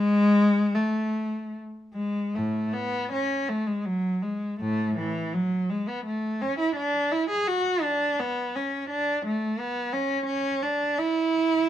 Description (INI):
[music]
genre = classical, baroque-style suite movement for unaccompanied cello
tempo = 73-87 BPM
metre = 3/4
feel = rubato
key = A major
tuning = A4 = 437 Hz
[part]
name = rich cello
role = solo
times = 0.0-11.7 s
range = A2 to G#4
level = -24 LUFS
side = equal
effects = none
[sound]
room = light reverb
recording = dark, warm production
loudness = -24 LUFS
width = side -11 dB against mid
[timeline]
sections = 0.0-2.4 A section; 2.4-11.7 B section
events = none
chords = none